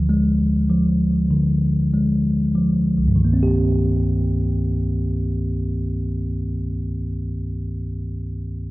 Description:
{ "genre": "pop", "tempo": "47 BPM", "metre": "4/4", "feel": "straight", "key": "C minor", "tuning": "A4 = 440 Hz", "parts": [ { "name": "mellow tine electric piano", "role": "accompaniment", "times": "0.0-8.7 s", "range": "C2 to G4", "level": "-18 LUFS", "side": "equal", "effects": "none" } ], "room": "light reverb", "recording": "dark, warm production", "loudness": "-18 LUFS", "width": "side -19 dB against mid", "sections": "0.0-3.2 A section; 3.2-8.3 B section", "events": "slowing down 0.0-3.2", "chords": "0.0 Ddim; 3.2 Cm7", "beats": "0.70 1.93 | 3.21 4.50 5.78 7.06" }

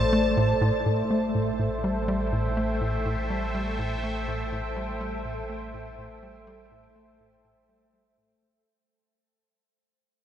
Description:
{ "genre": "ambient, sequencer-driven space music", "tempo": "123 BPM", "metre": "4/4", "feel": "straight", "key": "A minor", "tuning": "A4 = 440 Hz", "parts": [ { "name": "mellow horn-like synth lead", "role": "melody", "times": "0.0-0.6 s", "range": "C5", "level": "-33 LUFS", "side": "left 2 dB", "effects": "none" }, { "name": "sweeping resonant pad", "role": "sustained chords", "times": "0.0-8.6 s", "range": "A3 to A5", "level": "-30 LUFS", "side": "right 1 dB", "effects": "chorus, shimmer reverb" }, { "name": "tight sequencer bass", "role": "riff", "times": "0.0-8.7 s", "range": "A2 to A3", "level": "-28 LUFS", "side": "equal", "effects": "vintage 12-bit sampler grit, tape echo" }, { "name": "warm sub bass", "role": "bass", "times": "0.0-8.6 s", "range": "A1", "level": "-34 LUFS", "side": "equal", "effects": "none" }, { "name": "wind-like tuned noise texture", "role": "texture", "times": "0.1-8.7 s", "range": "D5 to G5", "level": "-40 LUFS", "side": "left 2 dB", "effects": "built-in reverb, shimmer reverb" } ], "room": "wet huge ambient reverb, RT60 8.6 s", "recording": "none", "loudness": "-24 LUFS", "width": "side -10 dB against mid", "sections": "0.9-8.7 A section", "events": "fade-out on analog synth bass 0.9-8.7; fade-out on sub bass 0.9-8.7; fade-out 0.9-8.7", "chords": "0.0 Am", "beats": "0.37 | 0.86 1.35 1.84 2.32 | 2.81 3.30 3.79 4.28 | 4.76 5.25 5.74 6.23 | 6.71 7.20 7.69 8.18" }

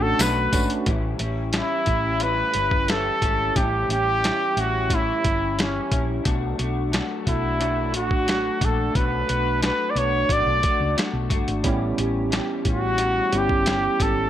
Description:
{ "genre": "indie pop, bedroom pop", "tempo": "89 BPM", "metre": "4/4", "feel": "straight", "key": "unclear", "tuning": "A4 = 441 Hz", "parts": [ { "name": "breathy trumpet", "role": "melody", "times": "0.0-14.3 s", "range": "C#4 to D5", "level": "-23 LUFS", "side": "equal", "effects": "analog chorus, slapback echo" }, { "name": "electric guitar through a small old amp", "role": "accompaniment", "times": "0.0-14.3 s", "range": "A2 to G4", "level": "-28 LUFS", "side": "left 2 dB", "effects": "analog chorus, warbly pitch drift" }, { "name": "tine electric piano", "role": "accompaniment", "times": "0.0-0.9, 11.6-14.3 s", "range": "G3 to F#4", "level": "-27 LUFS", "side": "right 3 dB", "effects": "medium stereo tremolo, cassette tape" }, { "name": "hollow-body short-scale fingered electric bass", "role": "bass", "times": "0.0-14.3 s", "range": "G1 to C#2", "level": "-27 LUFS", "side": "equal", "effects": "none" }, { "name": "lo-fi sampler-style drum kit", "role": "drums", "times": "0.2-14.2 s", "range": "hi-hat, kick drum, snare drum", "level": "-25 LUFS", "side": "equal", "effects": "none" }, { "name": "tambourine", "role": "percussion", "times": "0.2-0.7 s", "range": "none", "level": "-32 LUFS", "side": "left 6 dB", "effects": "none" } ], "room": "light reverb", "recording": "none", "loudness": "-20 LUFS", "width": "side -11 dB against mid", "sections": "0.9-14.3 A section", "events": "none", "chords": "0.0 Bm7; 0.9 A7; 6.3 Bm7; 11.6 A7", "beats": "0.20 | 0.87 1.55 2.22 2.89 | 3.56 4.24 4.91 5.58 | 6.26 6.93 7.61 8.28 | 8.95 9.62 10.30 10.97 | 11.65 12.32 12.99 13.67" }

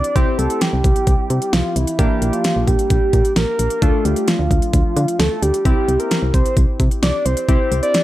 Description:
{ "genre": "synth-pop", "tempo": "131 BPM", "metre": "4/4", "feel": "straight", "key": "unclear", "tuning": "A4 = 436 Hz", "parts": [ { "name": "soft octave-layered synth lead", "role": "melody", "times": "0.0-8.0 s", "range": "E4 to D5", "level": "-20 LUFS", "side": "right 1 dB", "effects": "chorus, slapback echo" }, { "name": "warm analog keys", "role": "accompaniment", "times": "0.0-8.0 s", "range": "A3 to G4", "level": "-24 LUFS", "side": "left 2 dB", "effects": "chorus" }, { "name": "solid FM bass", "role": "bass", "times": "0.0-7.8 s", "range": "Bb1 to D3", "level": "-19 LUFS", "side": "equal", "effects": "none" }, { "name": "pop drum kit", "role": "drums", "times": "0.0-8.0 s", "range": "hi-hat, kick drum, snare drum", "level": "-18 LUFS", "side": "equal", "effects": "none" } ], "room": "light reverb", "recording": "none", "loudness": "-14 LUFS", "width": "side -15 dB against mid", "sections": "0.0-8.0 A section", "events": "none", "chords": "0.0 C; 2.0 Gm/Bb; 3.8 Dm; 5.7 C", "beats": "| 0.16 0.61 1.07 1.53 | 1.99 2.45 2.91 3.36 | 3.82 4.28 4.74 5.20 | 5.65 6.11 6.57 7.03 | 7.49 7.94" }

